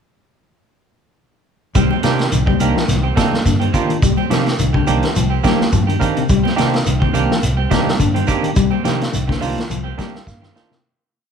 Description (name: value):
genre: afrobeat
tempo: 106 BPM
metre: 4/4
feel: swing 54% on 16ths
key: C minor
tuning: A4 = 437 Hz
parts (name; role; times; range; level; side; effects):
- clean electric guitar; stabs; 1.7-10.7 s; Eb3 to G4; -23 LUFS; right 6 dB; spring reverb
- vintage drum kit; drums; 1.7-10.8 s; hi-hat, kick drum, snare drum; -20 LUFS; equal; none
- electric guitar at the edge of break-up; arpeggios; 1.8-10.8 s; C3 to G3; -21 LUFS; left 8 dB; none
- fingered electric bass; bass; 1.8-10.5 s; C2 to C3; -20 LUFS; equal; none
- congas; percussion; 1.8-10.4 s; none; -27 LUFS; right 4 dB; none
- shekere; percussion; 1.8-10.7 s; none; -25 LUFS; right 2 dB; none
- barky tine electric piano; accompaniment; 2.0-10.8 s; Bb3 to G5; -23 LUFS; right 5 dB; overdrive
room: moderate large studio reverb, RT60 0.8 s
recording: band playing live in one room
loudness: -14 LUFS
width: side -7 dB against mid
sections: 1.8-10.8 groove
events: fade-out 8.6-10.8; tine electric piano fill 9.7-10.8; drum fill 10.3-10.8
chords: 1.8 Cm7